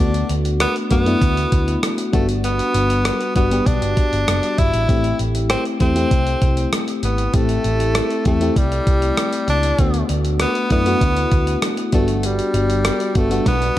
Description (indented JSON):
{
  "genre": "1980s-style pop",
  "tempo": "98 BPM",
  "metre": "4/4",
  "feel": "straight",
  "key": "A dorian",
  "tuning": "A4 = 441 Hz",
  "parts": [
    { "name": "edgy tenor saxophone", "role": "melody", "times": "0.0-13.8 s", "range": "G3 to E4", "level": "-22 LUFS", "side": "equal", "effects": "none" },
    { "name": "FM electric piano", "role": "accompaniment", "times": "0.0-13.8 s", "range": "G3 to G4", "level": "-22 LUFS", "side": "left 2 dB", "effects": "chorus" },
    { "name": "hollow-body short-scale picked electric bass", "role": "bass", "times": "0.0-13.8 s", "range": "F#1 to F#2", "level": "-21 LUFS", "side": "equal", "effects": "none" },
    { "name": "gated 80s digital drum machine", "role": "drums", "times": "0.1-13.8 s", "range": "hi-hat, kick drum, rim click, snare drum, toms", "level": "-20 LUFS", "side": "equal", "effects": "gated reverb, gated reverb snare" }
  ],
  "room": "light reverb",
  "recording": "dark, warm production",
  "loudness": "-16 LUFS",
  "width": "side -14 dB against mid",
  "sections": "0.0-13.8 A section",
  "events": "drum fill 13.5-13.8",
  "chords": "0.0 D6; 2.1 Gmaj7; 4.9 Am7; 9.8 D6; 11.9 Gmaj7"
}